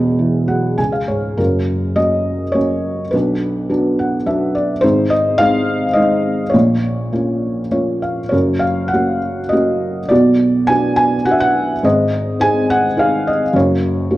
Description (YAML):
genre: classical, lyrical solo piano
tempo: 104 BPM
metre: 3/4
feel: rubato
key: unclear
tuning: A4 = 441 Hz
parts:
  - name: felt-muted upright piano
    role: solo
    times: 0.0-14.2 s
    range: E1 to G#5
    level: -14 LUFS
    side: equal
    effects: none
room: moderate recital hall reverb, RT60 1.6 s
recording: dark, warm production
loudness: -14 LUFS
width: side -16 dB against mid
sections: 0.0-1.4 A section; 1.4-14.2 B section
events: felt piano fill 0.2-1.4, 3.7-4.8, 7.4-8.3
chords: 0.0 Esus2; 0.8 C#5; 1.4 Gb; 3.1 Cbm; 4.8 Ab; 6.5 Bbm; 8.3 Gb; 10.1 Cbm; 11.8 Ab; 13.5 Gb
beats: 0.19 0.79 | 1.39 1.98 2.56 | 3.14 3.71 4.27 | 4.83 5.40 5.97 | 6.54 7.12 7.72 | 8.33 8.93 9.51 | 10.10 10.69 11.27 | 11.84 12.41 12.98 | 13.54 14.11